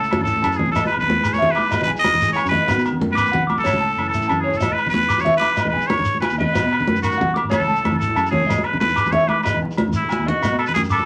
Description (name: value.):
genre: highlife guitar band.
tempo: 124 BPM (dotted quarters).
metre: 12/8.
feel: straight.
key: E major.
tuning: A4 = 440 Hz.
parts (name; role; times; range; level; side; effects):
trumpet with straight mute; melody; 0.0-11.1 s; E4 to D#5; -22 LUFS; equal; none.
nylon-string guitar; accompaniment; 0.0-11.1 s; E2 to G#4; -32 LUFS; equal; none.
electric guitar through a small old amp; arpeggios; 0.0-11.0 s; C#5 to D6; -25 LUFS; equal; none.
fingered electric bass; bass; 0.0-11.0 s; E1 to B2; -30 LUFS; equal; none.
shekere; percussion; 0.0-11.0 s; none; -30 LUFS; equal; none.
agogo bells; percussion; 0.1-11.1 s; none; -31 LUFS; equal; none.
congas; percussion; 0.1-11.1 s; none; -26 LUFS; equal; none.
room: wet studio ambience, RT60 0.5 s.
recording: vinyl crackle.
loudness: -19 LUFS.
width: mono.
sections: 0.0-11.1 A section.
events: drum fill 4.0-4.6.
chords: 0.0 A; 0.7 Emaj7; 2.7 B; 3.6 A; 4.6 Emaj7; 6.6 B; 7.5 A; 8.5 Emaj7; 10.4 B.